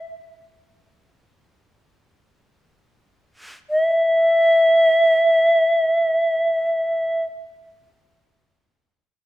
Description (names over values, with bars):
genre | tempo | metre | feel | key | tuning
japanese traditional, Japanese chamber music | free time | none | none | unclear | A4 = 440 Hz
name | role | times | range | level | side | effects
bright reedy shakuhachi | solo | 3.7-7.2 s | E5 | -16 LUFS | equal | none
room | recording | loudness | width
moderate recital hall reverb, RT60 1.4 s | none | -15 LUFS | side -16 dB against mid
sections
0.0-3.7 A section; 3.7-8.5 B section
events
slowing down 0.0-3.7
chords
none